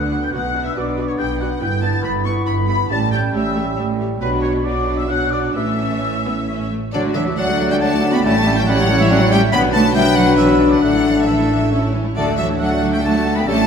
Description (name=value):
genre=quick classical-period movement for symphony orchestra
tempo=138 BPM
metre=3/4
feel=rubato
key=D major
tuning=A4 = 440 Hz
part: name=clear oboe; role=second line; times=0.0-13.7 s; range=B4 to C#6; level=-28 LUFS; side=right 1 dB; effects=none
part: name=dark clarinet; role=second line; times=0.0-13.7 s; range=C#4 to E4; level=-24 LUFS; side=left 1 dB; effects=none
part: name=mellow flute section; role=second line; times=0.0-13.7 s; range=A4 to A6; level=-25 LUFS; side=left 4 dB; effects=none
part: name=rich studio violin section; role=second line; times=0.0-13.7 s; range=B3 to C#6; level=-29 LUFS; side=left 3 dB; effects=none
part: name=warm bassoon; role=accompaniment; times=0.0-13.7 s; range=E3 to B3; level=-26 LUFS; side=right 2 dB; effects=none
part: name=mellow French horn section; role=sustained chords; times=0.0-13.6 s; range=F#3 to G4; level=-23 LUFS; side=left 4 dB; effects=none
part: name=rich studio cello section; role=bass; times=0.0-13.7 s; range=G2 to B3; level=-22 LUFS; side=right 2 dB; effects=none
part: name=rich studio double bass section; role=bass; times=0.0-13.7 s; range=G1 to D2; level=-23 LUFS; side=right 3 dB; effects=none
part: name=rich studio violin section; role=melody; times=0.1-13.7 s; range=B4 to B5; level=-25 LUFS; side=left 3 dB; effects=none
part: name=rich studio viola section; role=accompaniment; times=0.1-13.7 s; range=D3 to A4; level=-25 LUFS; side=right 1 dB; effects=none
part: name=mellow trumpet section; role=stabs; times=6.9-13.6 s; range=A4 to D5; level=-24 LUFS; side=equal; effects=none
room=wet concert hall reverb, RT60 1.8 s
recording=none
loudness=-15 LUFS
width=side -7 dB against mid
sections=0.0-6.9 A section; 6.9-13.7 B section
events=none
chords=0.3 Bm; 1.6 Em/G; 2.9 A7; 4.2 Bm; 5.6 A; 6.9 D; 8.2 A7; 9.5 Bm; 10.8 Asus4; 11.7 A; 12.2 D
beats=| 0.34 0.76 1.19 | 1.61 2.04 2.47 | 2.90 3.34 3.78 | 4.21 4.65 5.10 | 5.56 6.02 6.49 | 6.94 7.38 7.81 | 8.24 8.68 9.11 | 9.53 9.96 10.38 | 10.82 11.27 11.72 | 12.16 12.60 13.03 | 13.47